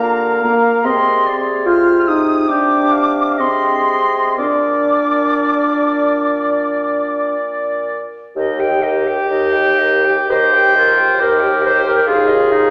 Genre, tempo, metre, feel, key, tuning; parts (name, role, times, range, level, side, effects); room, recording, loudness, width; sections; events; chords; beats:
classical, slow romantic movement for wind quintet; 57-74 BPM; 4/4; rubato; Eb major; A4 = 440 Hz
silver concert flute; melody; 0.0-12.7 s; Eb5 to F6; -21 LUFS; equal
warm oboe; second line; 0.0-12.7 s; Eb4 to G5; -23 LUFS; equal
dark French horn; accompaniment; 0.0-12.7 s; Bb3 to Bb4; -21 LUFS; equal
dark clarinet; accompaniment; 0.0-12.7 s; F4 to C5; -20 LUFS; equal
mellow bassoon; bass; 0.0-12.7 s; Eb2 to D3; -24 LUFS; equal
wet recital hall reverb, RT60 1.8 s; -15 LUFS; mono
0.0-8.4 A section; 8.4-12.7 B section
0.0 Bb/D; 0.8 Ab/C; 4.4 Bb; 8.4 Eb; 12.1 Fm7/Eb
0.02 | 0.85 1.66 2.49 3.39 | 4.38 5.38 6.38 7.38 | 8.36 9.31 10.31 11.20 | 12.07